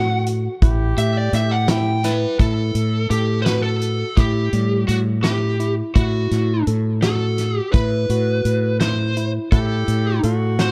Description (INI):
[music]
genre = progressive instrumental, band music in an uneven meter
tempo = 168 BPM (eighths)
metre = 5/8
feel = straight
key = A dorian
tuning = A4 = 440 Hz
[part]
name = lead guitar through a small cranked amp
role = melody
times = 0.0-10.7 s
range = F#4 to G5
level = -26 LUFS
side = equal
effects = overdrive, delay
[part]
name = clear alto saxophone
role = second line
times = 0.0-2.0, 9.5-10.7 s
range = F#4 to G4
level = -31 LUFS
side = equal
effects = none
[part]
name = bright tine electric piano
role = arpeggios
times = 0.0-10.7 s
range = G3 to A4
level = -29 LUFS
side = equal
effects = none
[part]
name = mellow fretless electric bass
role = bass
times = 0.0-10.7 s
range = A1 to A2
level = -22 LUFS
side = equal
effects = none
[part]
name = natural country drum kit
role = drums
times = 0.3-10.7 s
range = hi-hat, kick drum, snare drum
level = -23 LUFS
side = equal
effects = none
[sound]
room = small room ambience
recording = dark, warm production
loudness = -19 LUFS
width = mono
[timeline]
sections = 0.0-2.4 A section; 2.4-10.7 B section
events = lead electric guitar solo 0.0-2.4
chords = 0.0 D/A (rootless); 0.6 A5; 6.0 Asus2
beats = 0.27 | 0.62 0.98 1.33 1.69 2.04 | 2.40 2.75 3.11 3.47 3.82 | 4.18 4.53 4.89 5.25 5.60 | 5.96 6.32 6.67 7.03 7.38 | 7.74 8.10 8.45 8.81 9.17 | 9.53 9.88 10.24 10.60